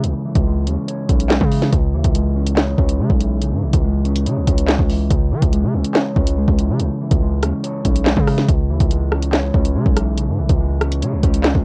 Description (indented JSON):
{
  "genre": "hip hop, drill",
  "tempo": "142 BPM",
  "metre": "4/4",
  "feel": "half-time",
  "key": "C# minor",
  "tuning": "A4 = 440 Hz",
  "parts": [
    { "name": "mellow electric guitar", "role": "accompaniment", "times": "0.0-11.6 s", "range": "C#3 to C#5", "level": "-24 LUFS", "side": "equal", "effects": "low-pass filter, cassette tape" },
    { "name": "distorted 808-style bass", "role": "bass", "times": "0.0-11.6 s", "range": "B1 to E3", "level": "-21 LUFS", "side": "equal", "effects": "distortion" },
    { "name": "drill drum kit", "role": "drums", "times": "0.0-11.6 s", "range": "handclaps, hi-hat, kick drum, rim click, snare drum", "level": "-20 LUFS", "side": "equal", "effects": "vintage 12-bit sampler grit, cassette tape" }
  ],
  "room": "light reverb",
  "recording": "home recording on cassette",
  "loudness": "-18 LUFS",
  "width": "mono",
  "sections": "0.0-11.6 A section",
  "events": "filter sweep on clean electric guitar 0.0-11.6",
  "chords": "0.0 C#m"
}